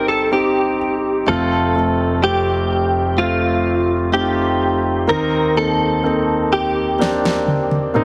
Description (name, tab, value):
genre	pop ballad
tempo	63 BPM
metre	4/4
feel	straight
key	unclear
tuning	A4 = 440 Hz
part	direct-recorded clean electric guitar	melody	0.0-8.0 s	F4 to Bb4	-21 LUFS	equal	ensemble chorus
part	clear concert grand piano	accompaniment	0.0-8.0 s	F1 to G4	-20 LUFS	equal	none
part	smooth R&B drum kit	drums	7.0-8.0 s	snare drum, toms	-22 LUFS	equal	none
room	moderate lush hall reverb, RT60 2.6 s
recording	heavily compressed radio sound, multiband compression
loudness	-18 LUFS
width	mono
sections	0.0-8.0 A section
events	drum fill 7.0-8.0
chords	0.0 Eb6/G; 1.3 F; 5.1 Cm7/Eb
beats	0.33 | 1.28 2.23 3.19 4.14 | 5.09 6.04 7.00 7.95